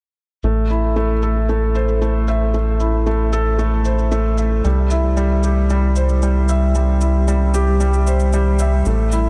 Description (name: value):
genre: piano and strings electronica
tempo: 114 BPM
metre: 4/4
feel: straight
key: A minor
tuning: A4 = 440 Hz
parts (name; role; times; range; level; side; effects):
- felt-muted upright piano; riff; 0.4-9.3 s; G3 to E5; -22 LUFS; equal; diffuse ambient delay
- round analog bass; bass; 0.4-9.3 s; A1 to C2; -19 LUFS; equal; none
- shaker; drums; 0.4-9.2 s; none; -39 LUFS; equal; low-pass filter on perc
room: moderate huge ambient reverb, RT60 7.4 s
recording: dreamy mix soaked in reverb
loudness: -17 LUFS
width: mono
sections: 0.4-9.3 A section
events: filter sweep on analog synth bass 0.4-9.3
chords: 0.4 Am; 4.6 C